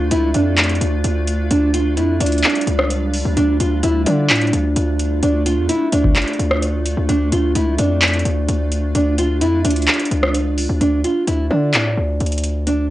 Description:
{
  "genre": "hip hop, trap",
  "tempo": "129 BPM",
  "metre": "4/4",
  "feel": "half-time",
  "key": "D harmonic minor",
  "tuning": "A4 = 438 Hz",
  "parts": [
    { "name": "nylon-string guitar", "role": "melody", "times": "0.0-12.9 s", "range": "D4 to F4", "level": "-19 LUFS", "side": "right 1 dB", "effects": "cassette tape" },
    { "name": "granular cloud pad", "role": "sustained chords", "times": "0.0-10.8 s", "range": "G3 to F4", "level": "-26 LUFS", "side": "right 1 dB", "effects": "built-in reverb" },
    { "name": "hard-hitting 808-style bass", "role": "bass", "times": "0.0-12.9 s", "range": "C#2 to D3", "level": "-19 LUFS", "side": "equal", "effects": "none" },
    { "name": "booming analog drum machine", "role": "drums", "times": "0.1-12.8 s", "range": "handclaps, hi-hat, kick drum, rim click", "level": "-19 LUFS", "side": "equal", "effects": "cassette tape" }
  ],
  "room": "light reverb",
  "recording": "home recording on cassette, nothing above 10.4 kHz",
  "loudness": "-15 LUFS",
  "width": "side -15 dB against mid",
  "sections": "0.0-10.8 A section; 10.8-12.9 B section",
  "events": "none",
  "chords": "0.0 Dm; 10.8 D5"
}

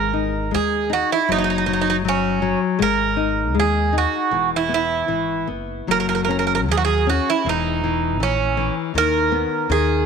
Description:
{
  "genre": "fado-style ballad",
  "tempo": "79 BPM",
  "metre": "2/4",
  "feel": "rubato",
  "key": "G# minor",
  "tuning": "A4 = 438 Hz",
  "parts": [
    { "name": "Greek bouzouki", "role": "melody", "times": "0.0-10.1 s", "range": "C#4 to A#4", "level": "-20 LUFS", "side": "right 8 dB", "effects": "none" },
    { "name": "nylon-string guitar", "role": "accompaniment", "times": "0.0-10.1 s", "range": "D#3 to D#4", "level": "-23 LUFS", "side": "left 10 dB", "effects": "none" },
    { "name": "upright bass", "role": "bass", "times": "0.0-10.1 s", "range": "E1 to D#2", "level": "-25 LUFS", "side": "equal", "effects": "none" }
  ],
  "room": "moderate plate reverb, RT60 3.3 s",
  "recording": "1960s-style stereo with parts hard left and right",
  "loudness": "-18 LUFS",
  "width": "side -6 dB against mid",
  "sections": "0.0-10.1 A section",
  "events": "none",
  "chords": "0.0 G#5; 1.3 D#7#9/F#; 2.8 G#5; 4.3 E; 5.9 F#5; 7.5 C#m69/E; 9.0 Bmaj7/D#"
}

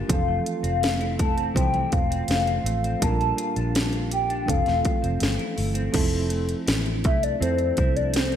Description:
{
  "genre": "indie pop, bedroom pop",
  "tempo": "82 BPM",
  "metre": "4/4",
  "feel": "straight",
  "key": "F major",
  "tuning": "A4 = 438 Hz",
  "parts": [
    { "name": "electric guitar through a small old amp", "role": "accompaniment", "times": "0.0-8.4 s", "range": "Bb2 to F4", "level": "-31 LUFS", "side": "left 1 dB", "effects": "analog chorus, vibrato effect" },
    { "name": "reed electric piano", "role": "accompaniment", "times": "0.0-8.4 s", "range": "E3 to C5", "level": "-31 LUFS", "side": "right 6 dB", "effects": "fast tremolo, cassette tape" },
    { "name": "hollow clarinet-like synth lead", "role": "melody", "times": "0.1-8.4 s", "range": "C5 to A5", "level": "-26 LUFS", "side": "left 2 dB", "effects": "wide subtle chorus, digital delay" },
    { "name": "vintage muted fingered electric bass", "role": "bass", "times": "0.1-8.4 s", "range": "E1 to F2", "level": "-27 LUFS", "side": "equal", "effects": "none" },
    { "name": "house drum kit", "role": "drums", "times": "0.1-8.4 s", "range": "crash cymbal, hi-hat, kick drum, snare drum", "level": "-26 LUFS", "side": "equal", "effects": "overdrive, gated reverb" }
  ],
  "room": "moderate lush hall reverb, RT60 2.7 s",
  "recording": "bright 1980s-style digital production",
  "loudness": "-21 LUFS",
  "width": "side -9 dB against mid",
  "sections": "0.0-6.0 A section; 6.0-8.4 B section",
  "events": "soft synth lead solo 6.0-8.4",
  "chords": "0.1 Fmaj7; 3.0 Bb6; 4.5 Fmaj7"
}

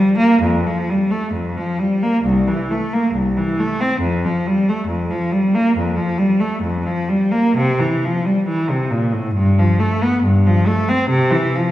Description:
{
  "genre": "classical, baroque-style suite movement for unaccompanied cello",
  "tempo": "68 BPM",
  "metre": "4/4",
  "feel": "rubato",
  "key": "F major",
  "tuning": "A4 = 436 Hz",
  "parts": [
    { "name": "rich cello", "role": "solo", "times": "0.0-11.7 s", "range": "C2 to C4", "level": "-15 LUFS", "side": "equal", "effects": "none" }
  ],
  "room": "wet recital hall reverb, RT60 1.3 s",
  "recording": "heard from further back in the room",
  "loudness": "-15 LUFS",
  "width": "side -14 dB against mid",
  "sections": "0.4-11.7 A section",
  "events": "none",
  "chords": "none"
}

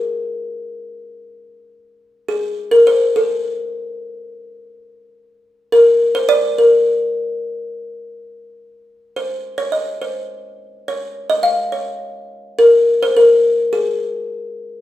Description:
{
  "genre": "mexican folk",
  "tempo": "104 BPM",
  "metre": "3/4",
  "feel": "straight",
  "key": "unclear",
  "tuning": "A4 = 440 Hz",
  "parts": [
    { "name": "buzzing kalimba", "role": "solo", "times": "0.0-14.8 s", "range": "Ab4 to F5", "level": "-14 LUFS", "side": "left 1 dB", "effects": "none" }
  ],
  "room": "moderate large studio reverb, RT60 1.1 s",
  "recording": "band playing live in one room",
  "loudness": "-13 LUFS",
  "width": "side -14 dB against mid",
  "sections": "0.0-1.7 A section; 1.7-14.8 B section",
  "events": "none",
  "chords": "none"
}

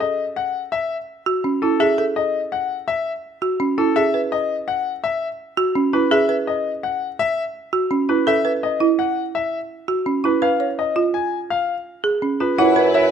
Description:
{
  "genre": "classical, minimalist pattern music",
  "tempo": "167 BPM",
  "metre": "6/4",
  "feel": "straight",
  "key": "unclear",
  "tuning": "A4 = 440 Hz",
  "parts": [
    { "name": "bright grand piano", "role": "melody", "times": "0.0-13.1 s", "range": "A4 to G#5", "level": "-21 LUFS", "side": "left 6 dB", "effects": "none" },
    { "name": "folk marimba with medium mallets", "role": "arpeggios", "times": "0.0-13.1 s", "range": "C#4 to C#5", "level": "-19 LUFS", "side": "right 4 dB", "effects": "none" },
    { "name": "clear clarinet", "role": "second line", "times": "12.6-13.1 s", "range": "B4", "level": "-25 LUFS", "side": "right 2 dB", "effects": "none" },
    { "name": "rich studio string section", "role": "sustained chords", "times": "12.6-13.1 s", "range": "E4 to B4", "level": "-24 LUFS", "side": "left 1 dB", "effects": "none" },
    { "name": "dark bassoon", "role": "bass", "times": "12.6-13.1 s", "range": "F#2", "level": "-18 LUFS", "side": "equal", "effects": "none" }
  ],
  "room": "moderate large studio reverb, RT60 1.3 s",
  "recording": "close, detailed microphones",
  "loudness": "-18 LUFS",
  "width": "side -8 dB against mid",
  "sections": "0.0-12.6 A section",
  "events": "none",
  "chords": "0.0 F#m9; 4.0 Eadd9; 8.3 A69; 10.4 C#7; 12.6 F#7sus4"
}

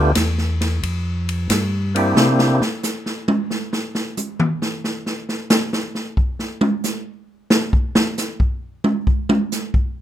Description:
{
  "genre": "soul jazz organ trio",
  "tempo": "90 BPM",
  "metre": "4/4",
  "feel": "swing 68% on 8ths",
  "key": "unclear",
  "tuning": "A4 = 439 Hz",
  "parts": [
    { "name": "percussive tonewheel organ", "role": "melody", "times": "0.0-2.6 s", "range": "A3 to G4", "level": "-18 LUFS", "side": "equal", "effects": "slow rotary speaker, overdrive" },
    { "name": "mellow tonewheel organ", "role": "bass", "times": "0.0-2.6 s", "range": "D2 to C3", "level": "-20 LUFS", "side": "left 1 dB", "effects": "slow rotary speaker" },
    { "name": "swinging big-band drum kit", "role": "drums", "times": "0.2-10.0 s", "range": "hi-hat, kick drum, ride cymbal, snare drum, toms", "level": "-19 LUFS", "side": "equal", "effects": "none" }
  ],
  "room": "moderate club reverb, RT60 0.6 s",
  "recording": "minimal, uncompressed stereo recording",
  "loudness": "-18 LUFS",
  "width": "side -11 dB against mid",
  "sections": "0.0-10.0 A section",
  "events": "drum solo 2.2-10.0",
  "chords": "0.0 G7(no3); 2.2 C7; 4.8 N.C."
}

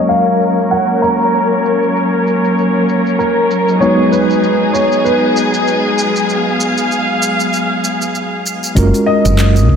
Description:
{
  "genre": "sunset chillout",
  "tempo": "97 BPM",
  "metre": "4/4",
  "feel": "swing 56% on 16ths",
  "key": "G# dorian",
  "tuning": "A4 = 440 Hz",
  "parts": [
    { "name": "mellow tine electric piano", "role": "accompaniment", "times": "0.0-9.8 s", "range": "G#3 to B4", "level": "-19 LUFS", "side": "equal", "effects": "medium stereo tremolo, auto-pan, ping-pong delay, shimmer reverb" },
    { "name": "muted studio string section", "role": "sustained chords", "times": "0.0-8.7 s", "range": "F#3 to E#5", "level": "-14 LUFS", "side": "left 1 dB", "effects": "shimmer reverb" },
    { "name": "dark baby grand piano", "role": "melody", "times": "0.1-9.8 s", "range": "A#4 to A#5", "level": "-16 LUFS", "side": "equal", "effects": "analog chorus, ping-pong delay, shimmer reverb" },
    { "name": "smooth R&B drum kit", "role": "drums", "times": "0.1-9.7 s", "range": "handclaps, hi-hat, shaker", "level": "-24 LUFS", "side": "right 2 dB", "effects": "overdrive" },
    { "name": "woody fretless electric bass", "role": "bass", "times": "8.8-9.8 s", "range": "F#1 to C#2", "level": "-10 LUFS", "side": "equal", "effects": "analog chorus" },
    { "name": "electronic kick drum", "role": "drums", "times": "8.8-9.8 s", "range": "none", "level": "-15 LUFS", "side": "equal", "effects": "overdrive" }
  ],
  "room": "wet plate reverb, RT60 3.0 s",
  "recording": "dreamy mix soaked in reverb, low-pass filter",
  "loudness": "-11 LUFS",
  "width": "side -7 dB against mid",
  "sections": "0.0-8.8 A section",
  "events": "filter sweep 0.0-8.8",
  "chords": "0.0 F#; 3.8 G#m7; 8.8 F#maj7"
}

